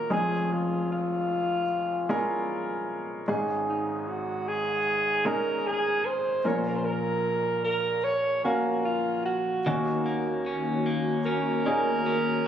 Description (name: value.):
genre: pop ballad.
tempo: 76 BPM.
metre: 4/4.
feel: straight.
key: Bb minor.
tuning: A4 = 440 Hz.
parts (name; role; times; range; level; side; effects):
breathy alto saxophone; melody; 0.0-12.5 s; Eb4 to Db5; -27 LUFS; right 1 dB; none.
clear baby grand piano; accompaniment; 0.0-12.5 s; F1 to F5; -28 LUFS; equal; none.
airy breathy pad; sustained chords; 10.2-12.5 s; Eb3 to Db5; -30 LUFS; left 2 dB; chorus.
clean electric guitar; arpeggios; 9.7-12.5 s; Eb3 to Db4; -32 LUFS; left 4 dB; ping-pong delay.
room: light reverb, small room ambience.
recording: recorded on a phone in the room, studio reverb.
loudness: -25 LUFS.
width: side -9 dB against mid.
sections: 0.0-12.5 A section.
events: none.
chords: 0.1 Db/F; 3.3 Absus4; 6.4 Bbm; 9.7 Ebm7.